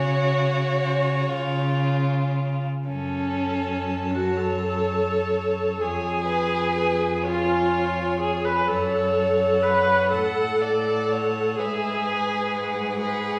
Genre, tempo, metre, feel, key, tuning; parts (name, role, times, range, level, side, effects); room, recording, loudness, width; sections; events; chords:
classical, slow romantic movement for string quartet; 42 BPM (dotted quarters); 6/8; rubato; F# minor; A4 = 440 Hz
clear violin; melody; 0.0-13.4 s; C#5 to A5; -35 LUFS; equal
rich violin; second line; 0.0-13.4 s; E#4 to F#5; -30 LUFS; equal
rich viola; accompaniment; 0.0-13.4 s; C#4 to C#5; -27 LUFS; equal
clear cello; bass; 0.0-13.4 s; E#2 to C#3; -29 LUFS; equal
wet recital hall reverb, RT60 1.3 s; recorded in a church or concert hall, studio ambience; -23 LUFS; mono
0.0-2.9 A section; 2.9-13.4 B section
0.0 F#5/C#; 2.9 F#m; 5.8 C#/E#; 8.7 F#m; 11.6 E/G#